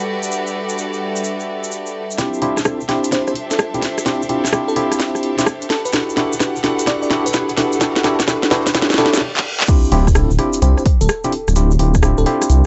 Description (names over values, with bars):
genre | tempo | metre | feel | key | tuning
UK garage, two-step garage | 128 BPM | 4/4 | swing 66% on 16ths | unclear | A4 = 442 Hz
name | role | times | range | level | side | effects
warm chamber violin section | sustained chords | 0.0-9.2 s | D4 to F#5 | -29 LUFS | equal | sidechain pumping, low-pass filter
cabasa | percussion | 0.0-12.6 s | none | -31 LUFS | equal | none
warbly tape-like pad | texture | 0.0-9.2 s | G3 to G5 | -32 LUFS | equal | none
tine electric piano | stabs | 2.2-12.7 s | C4 to B4 | -22 LUFS | equal | overdrive
electronic kick drum | drums | 2.2-12.0 s | none | -19 LUFS | equal | overdrive, high-pass filter on kick
house drum kit | drums | 2.2-12.6 s | crash cymbal, handclaps, hi-hat, rim click, snare drum | -22 LUFS | equal | overdrive
riser, reverse cymbal and sub drop | sound effects | 5.3-11.6 s | none | -32 LUFS | equal | none
bell-like FM electric piano | melody | 3.1-12.4 s | A4 to D5 | -27 LUFS | equal | chorus, phaser, analog delay
dark detuned saw bass | bass | 9.9-12.6 s | D1 to C2 | -15 LUFS | equal | none
room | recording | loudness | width
light reverb | dry, gritty hardware recording, nothing above 8.0 kHz | -17 LUFS | mono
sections
0.0-2.2 A section; 2.2-9.7 B section; 9.7-12.7 C section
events
build-up 2.2-9.7; drum fill 2.2-9.2, 9.3-9.7; reverse cymbal 8.7-9.7; stop 9.2-9.7; drop 9.7-12.7; impact 9.7-11.6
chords
0.0 Em11; 2.2 Dm11; 5.7 Em11; 9.7 Dm11